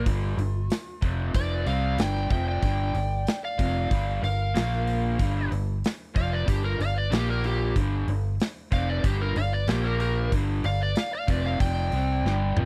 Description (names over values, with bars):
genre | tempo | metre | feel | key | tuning
blues rock power trio and southern rock | 94 BPM | 4/4 | straight | unclear | A4 = 441 Hz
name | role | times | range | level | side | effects
overdriven slide guitar | melody | 0.0-12.7 s | G4 to G5 | -33 LUFS | equal | none
lead guitar through a small cranked amp | second line | 0.0-12.7 s | Bb3 to E5 | -40 LUFS | equal | overdrive
raw garage guitar | riff | 0.0-12.7 s | F2 to C4 | -34 LUFS | equal | overdrive, spring reverb
vintage muted fingered electric bass | bass | 0.0-12.7 s | F1 to C2 | -29 LUFS | equal | none
big rock drum kit | drums | 0.1-12.7 s | hi-hat, kick drum, snare drum, toms | -29 LUFS | equal | none
room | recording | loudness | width
little or no reverb | dry, close 1970s-style studio recording | -26 LUFS | mono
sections
0.0-12.7 A section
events
drum fill 12.2-12.7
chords
0.1 G5; 4.6 Bb5; 5.2 G5; 7.1 Bb5; 7.8 G5; 9.7 Bb5; 10.3 G5